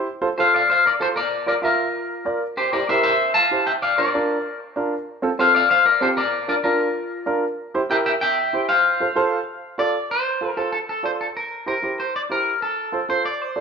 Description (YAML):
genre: latin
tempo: 191 BPM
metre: 4/4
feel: straight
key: F major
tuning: A4 = 440 Hz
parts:
  - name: warm upright piano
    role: accompaniment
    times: 0.0-13.6 s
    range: C4 to E5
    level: -23 LUFS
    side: right 2 dB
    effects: none
  - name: clean electric guitar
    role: melody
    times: 0.4-13.6 s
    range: F4 to A5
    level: -19 LUFS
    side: left 2 dB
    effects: spring reverb
room: moderate large studio reverb, RT60 1.0 s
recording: minimal, uncompressed stereo recording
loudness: -18 LUFS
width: side -6 dB against mid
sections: 0.1-10.1 A section; 10.1-13.6 B section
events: none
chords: 0.1 F; 1.3 Bb; 2.6 C7; 3.8 Bb; 5.1 F; 6.3 Bb; 7.6 C7; 8.8 F; 11.4 C7; 12.6 F